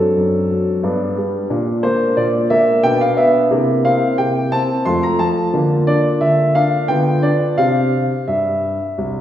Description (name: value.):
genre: classical-period piano sonatina.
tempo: 89 BPM.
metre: 3/4.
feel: straight.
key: unclear.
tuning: A4 = 440 Hz.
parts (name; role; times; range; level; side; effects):
warm grand piano; solo; 0.0-9.2 s; C2 to C6; -14 LUFS; equal; none.
room: wet recital hall reverb, RT60 1.7 s.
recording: recorded in a church or concert hall.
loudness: -14 LUFS.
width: side -11 dB against mid.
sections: 0.0-9.2 A section.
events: none.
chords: 0.0 D7/F#; 0.8 G; 1.5 Bbadd9; 2.8 Bmadd11; 3.5 C7; 4.9 F; 5.5 Bb/D; 6.9 G7/D; 7.6 C.